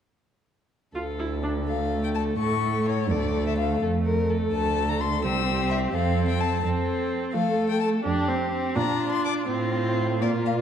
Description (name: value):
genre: quick classical-period movement for string quartet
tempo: 84 BPM (dotted quarters)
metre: 6/8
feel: rubato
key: D minor, F major from 6.6 s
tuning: A4 = 439 Hz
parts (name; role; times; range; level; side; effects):
- rich viola; accompaniment; 0.9-10.6 s; A3 to F4; -27 LUFS; right 1 dB; none
- warm violin; second line; 1.0-10.6 s; F4 to Bb4; -30 LUFS; left 4 dB; none
- warm cello; bass; 1.0-10.6 s; C2 to F3; -27 LUFS; right 3 dB; none
- rich violin; melody; 1.7-10.5 s; C#5 to E6; -30 LUFS; left 8 dB; none
room: moderate scoring stage reverb, RT60 1.6 s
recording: dark, warm production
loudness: -23 LUFS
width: side -8 dB against mid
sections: 0.9-10.6 A section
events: none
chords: 0.9 Dm; 2.4 A; 3.1 D5; 3.8 F; 5.2 C; 5.9 F; 8.1 F5; 8.8 Bb; 9.5 F/A